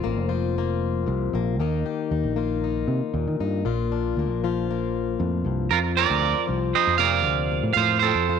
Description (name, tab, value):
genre	highlife guitar band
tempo	116 BPM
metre	4/4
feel	straight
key	F mixolydian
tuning	A4 = 438 Hz
part	fingerpicked plugged-in swing-style acoustic guitar	accompaniment	0.0-8.4 s	F2 to G4	-26 LUFS	left 10 dB	none
part	fingered electric bass	bass	0.1-8.4 s	F1 to Eb3	-26 LUFS	right 1 dB	none
part	electric guitar at the edge of break-up	melody	5.7-8.4 s	F4 to F5	-20 LUFS	right 11 dB	slapback echo
room	light reverb, studio reverb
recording	1960s-style stereo with parts hard left and right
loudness	-21 LUFS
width	side -7 dB against mid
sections	0.0-5.7 A section; 5.7-8.4 B section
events	none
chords	0.0 Fsus4; 1.6 Eb; 3.7 Bb; 5.7 Fsus4